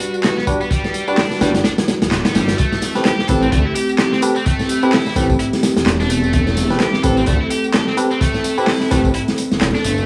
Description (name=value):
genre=breakbeat, breaks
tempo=128 BPM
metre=4/4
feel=swing 58% on 16ths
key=A dorian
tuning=A4 = 435 Hz
part: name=warbly tape-like pad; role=sustained chords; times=0.0-10.0 s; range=G3 to B4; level=-24 LUFS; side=equal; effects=chorus, built-in reverb, vintage 12-bit sampler grit, sidechain pumping
part: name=tight distorted guitar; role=riff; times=0.0-10.1 s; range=G3 to A4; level=-26 LUFS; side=equal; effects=distortion, vintage 12-bit sampler grit, tape echo
part: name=crunchy breakbeat drum kit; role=drums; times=0.0-10.0 s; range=hi-hat, kick drum, snare drum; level=-20 LUFS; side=equal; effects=none
part: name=punchy analog drum machine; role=drums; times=0.0-10.1 s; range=handclaps, hi-hat, tambourine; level=-29 LUFS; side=equal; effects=none
part: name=bell-like tine electric piano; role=stabs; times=0.5-9.1 s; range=C4 to B4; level=-24 LUFS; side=equal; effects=tape echo
part: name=detuned saw bass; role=bass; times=1.4-10.1 s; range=D1 to D2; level=-22 LUFS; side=equal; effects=none
room=light reverb, small room ambience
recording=vinyl crackle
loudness=-17 LUFS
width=mono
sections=0.0-2.6 A section; 2.6-10.1 B section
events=band accent 2.1; drop 2.6-10.1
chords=0.0 Gmaj7; 2.6 Am9